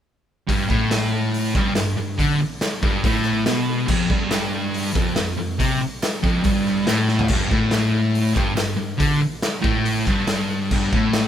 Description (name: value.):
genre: garage rock duo or trio.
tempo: 141 BPM.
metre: 4/4.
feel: straight.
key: G mixolydian.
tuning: A4 = 440 Hz.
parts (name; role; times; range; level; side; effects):
fuzz guitar; riff; 0.5-11.3 s; F2 to D3; -20 LUFS; equal; distortion.
raw garage drum kit; drums; 0.5-11.2 s; crash cymbal, hi-hat, kick drum, snare drum, toms; -23 LUFS; equal; none.
group handclap; percussion; 0.9-11.2 s; none; -34 LUFS; right 3 dB; none.
room: light reverb.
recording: band playing live in one room.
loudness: -18 LUFS.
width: side -10 dB against mid.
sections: 0.5-11.3 A section.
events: drum fill 7.1.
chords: none.